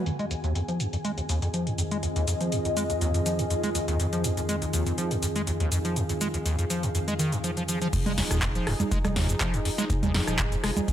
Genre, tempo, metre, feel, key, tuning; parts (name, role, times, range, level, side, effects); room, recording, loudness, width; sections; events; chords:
acid house; 122 BPM; 4/4; straight; F minor; A4 = 439 Hz
warm analog pad; sustained chords; 0.0-10.9 s; F2 to Ab4; -32 LUFS; equal; chorus, sidechain pumping
ethereal airy pad; texture; 0.0-7.9 s; C4 to Ab5; -33 LUFS; left 1 dB; ensemble chorus, built-in reverb, sidechain pumping
acid bass, square; riff; 0.1-10.9 s; Eb2 to Ab3; -28 LUFS; equal; overdrive, analog chorus, vintage 12-bit sampler grit, sidechain pumping, tape echo
electro analog drum machine; drums; 0.1-10.9 s; congas, crash cymbal, handclaps, hi-hat, rim click, shaker, snare drum; -31 LUFS; right 1 dB; low-pass filter on hats, low-pass filter on perc, low-pass filter on snare, low-pass filter on toms, low-pass filter on cymbals, low-pass filter on room
saturated sub bass; bass; 7.9-10.7 s; Eb1 to F1; -32 LUFS; equal; sidechain pumping
electronic kick drum; drums; 7.9-10.9 s; -29 LUFS; equal
light reverb; -24 LUFS; side -11 dB against mid
0.1-7.9 A section; 7.9-10.9 B section
filter sweep on analog synth pad 0.1-7.9; drop 7.9-10.9
0.1 Fm7